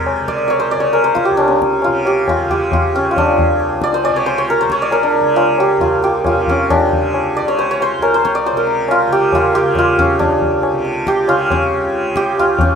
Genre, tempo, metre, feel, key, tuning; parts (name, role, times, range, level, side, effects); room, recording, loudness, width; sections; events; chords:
indian classical, Hindustani; 136 BPM; 4/4; straight; C# raga marwa; A4 = 441 Hz
santur; melody; 0.0-12.8 s; C#4 to D5; -14 LUFS; equal
tanpura; drone; 0.0-12.8 s; C#2 to C#3; -24 LUFS; right 2 dB
tabla; percussion; 0.1-12.8 s; -20 LUFS; left 3 dB
moderate studio reverb, RT60 0.6 s; minimal, uncompressed stereo recording; -12 LUFS; side -6 dB against mid
0.0-12.8 A section